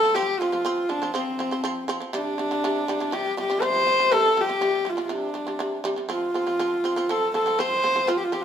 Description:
mongolian traditional, Mongolian folk; 121 BPM; 4/4; straight; F gong mode; A4 = 440 Hz
rich horsehead fiddle; melody; 0.0-8.4 s; C4 to C5; -22 LUFS; equal
shamisen; arpeggios; 0.0-8.4 s; C3 to C4; -28 LUFS; right 1 dB
wet stone room reverb, RT60 1.1 s; band playing live in one room; -22 LUFS; side -8 dB against mid
0.0-8.4 A section
0.0 F5; 2.1 C5; 6.1 F5

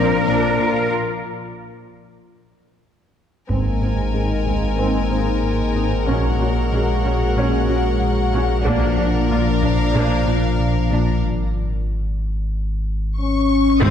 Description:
cinematic, hybrid orchestral and electronic film score; 93 BPM; 4/4; straight; A4 = 439 Hz
warm symphonic violin section; melody; 0.0-0.3, 13.2-13.9 s; Bb4 to Eb6; -29 LUFS; left 4 dB; low-pass filter
clear studio violin section; second line; 0.0-13.9 s; Bb4 to Ab5; -28 LUFS; left 3 dB
rich symphonic viola section; accompaniment; 0.0-13.9 s; Bb3 to Ab4; -25 LUFS; equal; low-pass filter
lush unison pad; sustained chords; 0.0-13.9 s; F3 to D5; -24 LUFS; left 2 dB; chorus, low-pass filter
mellow French horn section; sustained chords; 0.0-13.9 s; F3 to Gb4; -24 LUFS; left 4 dB; low-pass filter
smooth gliding synth bass; riff; 0.0-13.9 s; Ab2 to Bb2; -26 LUFS; right 2 dB; low-pass filter
rich symphonic cello section; bass; 0.0-13.9 s; Ab2 to Bb4; -27 LUFS; right 1 dB
rich symphonic double bass section; bass; 0.0-0.3, 13.8-13.9 s; Ab1 to Bb1; -31 LUFS; right 1 dB
warm sub bass; bass; 3.5-13.9 s; Ab1 to Bb1; -22 LUFS; equal
taiko ensemble; drums; 3.5-4.8, 8.7-9.9, 13.8-13.9 s; -30 LUFS; equal
warm trombone section; sustained chords; 13.8-13.9 s; barely audible
sub drop; sound effects; 13.8-13.9 s; -17 LUFS; left 1 dB
wet concert hall reverb, RT60 2.1 s; heard from further back in the room; -17 LUFS; side -9 dB against mid
0.0-3.5 A section; 3.5-13.8 B section
break 0.9-3.5, 11.2-13.8; drum fill 2.5-3.5, 12.9-13.8; filter sweep 3.5-13.8
0.0 Bb; 0.9 N.C.; 3.5 Abadd9; 6.1 Gbadd9/Bb; 8.7 Bb; 11.2 Absus4

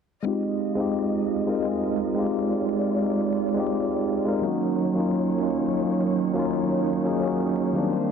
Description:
liquid drum and bass; 172 BPM; 4/4; straight; A4 = 436 Hz
tine electric piano; accompaniment; 0.2-8.1 s; Eb3 to Bb4; -23 LUFS; equal; auto-pan, low-pass filter, digital delay
warm symphonic string section; sustained chords; 0.3-8.1 s; Eb3 to Eb5; -29 LUFS; right 2 dB
electronic hi-hat; drums; 0.3-8.0 s; -56 LUFS; left 2 dB
light reverb, small room reverb; dense, heavily limited modern master, low-pass filter; -22 LUFS; side -7 dB against mid
0.3-8.1 A section
0.3 Fm7; 4.4 Ebm7

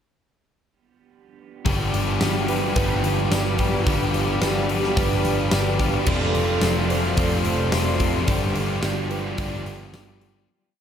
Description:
rock, shoegaze and dream pop; 109 BPM; 4/4; straight; G mixolydian; A4 = 439 Hz
biting overdriven guitar; riff; 1.6-10.5 s; F2 to G4; -27 LUFS; left 6 dB; ensemble chorus
crunchy overdriven guitar; riff; 1.6-10.5 s; F2 to G4; -30 LUFS; right 6 dB; reverse reverb
warbly tape-like pad; sustained chords; 2.0-10.5 s; G4 to C6; -31 LUFS; left 1 dB; chorus, built-in reverb, tremolo
picked plugged-in twelve-string acoustic guitar; arpeggios; 1.7-10.8 s; G4 to D5; -30 LUFS; right 4 dB; analog chorus, tape echo
distorted electric guitar; riff; 1.7-10.5 s; F2 to G3; -29 LUFS; equal; distortion
vintage muted picked electric bass; bass; 1.7-10.5 s; F1 to G1; -26 LUFS; equal
big rock drum kit; drums; 1.7-10.3 s; crash cymbal, hi-hat, kick drum, snare drum; -26 LUFS; equal
tambourine; percussion; 2.2-10.1 s; -40 LUFS; left 4 dB
wet huge ambient reverb, RT60 7.7 s; dreamy mix soaked in reverb; -19 LUFS; side -8 dB against mid
1.7-10.5 A section
fade-out 8.3-10.5
1.7 G7; 6.1 F6; 8.3 G7sus4

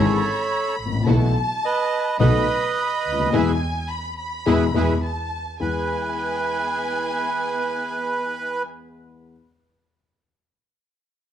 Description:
tango; 106 BPM; 4/4; rubato; E major; A4 = 436 Hz
bandoneon; melody; 0.0-8.6 s; G#4 to E5; -23 LUFS; right 4 dB
warm studio violin section; second line; 0.0-8.6 s; G#5 to B5; -30 LUFS; left 2 dB
warm grand piano; accompaniment; 0.0-9.3 s; G#1 to G#4; -24 LUFS; left 6 dB
rich studio string section; stabs; 0.0-8.6 s; B3 to A4; -32 LUFS; right 3 dB
dark double bass; bass; 0.0-5.8 s; G#1 to E2; -24 LUFS; right 1 dB
moderate large studio reverb, RT60 0.8 s; dark, warm production; -20 LUFS; side -10 dB against mid
0.0-5.6 A section; 5.6-7.9 B section
band accent 3.3-5.6
0.0 C#m; 1.1 B7sus4; 2.2 B7; 3.3 E; 5.0 N.C.; 5.6 E

